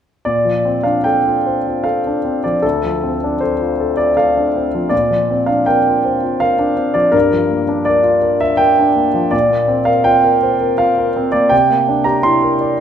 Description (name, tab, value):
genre	classical, impressionist solo piano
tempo	74-84 BPM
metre	3/4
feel	rubato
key	Bb major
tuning	A4 = 440 Hz
part	warm concert grand piano	solo	0.2-12.8 s	D2 to C6	-12 LUFS	equal	none
room	moderate recital hall reverb, RT60 1.6 s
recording	minimal, uncompressed stereo recording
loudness	-13 LUFS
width	side -8 dB against mid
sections	0.3-12.8 A section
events	none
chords	0.3 Bbmaj9; 2.6 Dm7; 4.9 Bbadd9; 7.1 Gm7; 9.3 Bbsus2; 11.5 C9